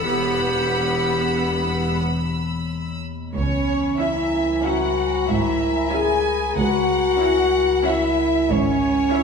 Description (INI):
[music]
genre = cinematic, suspense film score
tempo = 93 BPM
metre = 5/4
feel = straight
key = unclear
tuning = A4 = 441 Hz
[part]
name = clear clarinet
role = second line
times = 0.0-2.0 s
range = G4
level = -25 LUFS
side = left 1 dB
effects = none
[part]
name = rich symphonic violin section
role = second line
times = 0.0-9.2 s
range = C#5 to G#5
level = -26 LUFS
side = left 1 dB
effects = none
[part]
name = rich symphonic cello section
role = bass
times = 0.0-9.0 s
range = C#2 to G#2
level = -28 LUFS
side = right 2 dB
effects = none
[part]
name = rich symphonic double bass section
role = bass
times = 0.0-9.0 s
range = E1 to C#2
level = -29 LUFS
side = right 3 dB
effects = none
[part]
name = metallic inharmonic drone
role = drone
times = 0.0-9.2 s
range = C#2 to E2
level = -28 LUFS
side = left 2 dB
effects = chorus, built-in reverb
[part]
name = rich symphonic violin section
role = texture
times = 0.0-9.2 s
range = G#5 to E6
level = -30 LUFS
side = left 2 dB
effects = none
[part]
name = rich chamber violin section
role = melody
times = 0.1-9.2 s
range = E5 to B5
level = -31 LUFS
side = left 2 dB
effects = none
[part]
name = rich symphonic viola section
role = accompaniment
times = 0.1-9.2 s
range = B3 to E4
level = -29 LUFS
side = right 3 dB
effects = none
[part]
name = warm French horn section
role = sustained chords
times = 3.3-9.2 s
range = C#4 to G#4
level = -20 LUFS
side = left 1 dB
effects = none
[sound]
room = wet scoring stage reverb, RT60 1.6 s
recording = minimal, uncompressed stereo recording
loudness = -18 LUFS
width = side -5 dB against mid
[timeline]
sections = 0.0-3.3 A section; 3.3-9.2 B section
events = break 2.0-3.3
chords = 0.0 Emadd9; 3.3 C#m